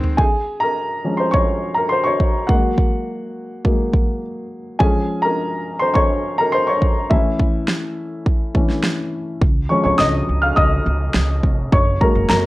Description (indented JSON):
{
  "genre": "piano-driven pop",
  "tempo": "104 BPM",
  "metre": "4/4",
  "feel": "straight",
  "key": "unclear",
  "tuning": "A4 = 440 Hz",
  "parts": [
    { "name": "warm upright piano", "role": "accompaniment", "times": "0.0-12.5 s", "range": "Eb3 to F6", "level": "-18 LUFS", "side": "left 1 dB", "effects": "none" },
    { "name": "pop drum kit", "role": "drums", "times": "0.0-12.4 s", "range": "kick drum, snare drum, toms", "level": "-17 LUFS", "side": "equal", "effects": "none" },
    { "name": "upright bass", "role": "bass", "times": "9.4-12.5 s", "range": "F1 to Db2", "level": "-20 LUFS", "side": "equal", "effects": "none" }
  ],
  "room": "light reverb, digital ambience",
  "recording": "worn, warbling old tape, cassette tape, warbly pitch drift",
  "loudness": "-16 LUFS",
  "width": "side -18 dB against mid",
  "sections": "0.2-12.5 A section",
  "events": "drum fill 0.0; band accent 0.0; upright piano solo 0.2-12.5",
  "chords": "0.2 Db; 2.5 Gbadd9; 4.8 Db; 7.1 A; 9.4 Db; 11.7 Gbadd9"
}